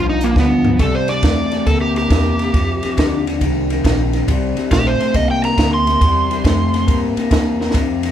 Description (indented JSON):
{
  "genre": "electric blues shuffle",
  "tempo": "138 BPM",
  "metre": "4/4",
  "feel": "swing 66% on 8ths",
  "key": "C mixolydian",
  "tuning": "A4 = 440 Hz",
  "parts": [
    { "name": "overdriven slide guitar", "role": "melody", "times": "0.0-7.0 s", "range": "Bb3 to C6", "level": "-19 LUFS", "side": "right 2 dB", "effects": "none" },
    { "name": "electric guitar through a small old amp", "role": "riff", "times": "0.0-8.1 s", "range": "F2 to Bb3", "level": "-19 LUFS", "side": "left 4 dB", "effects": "spring reverb" },
    { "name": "upright bass", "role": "bass", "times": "0.0-8.1 s", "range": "Bb1 to G2", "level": "-20 LUFS", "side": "right 1 dB", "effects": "none" },
    { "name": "compact cocktail drum kit", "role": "drums", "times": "0.2-8.1 s", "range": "hi-hat, kick drum, ride cymbal, snare drum, toms", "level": "-19 LUFS", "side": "equal", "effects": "none" }
  ],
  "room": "light reverb",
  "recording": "band playing live in one room",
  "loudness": "-14 LUFS",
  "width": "side -10 dB against mid",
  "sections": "0.8-8.1 A section",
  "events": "drum fill 0.4-0.8, 7.5; electric slide guitar solo 0.8-8.1",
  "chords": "0.0 G7; 0.8 C9; 2.5 Fsus2; 4.3 C9"
}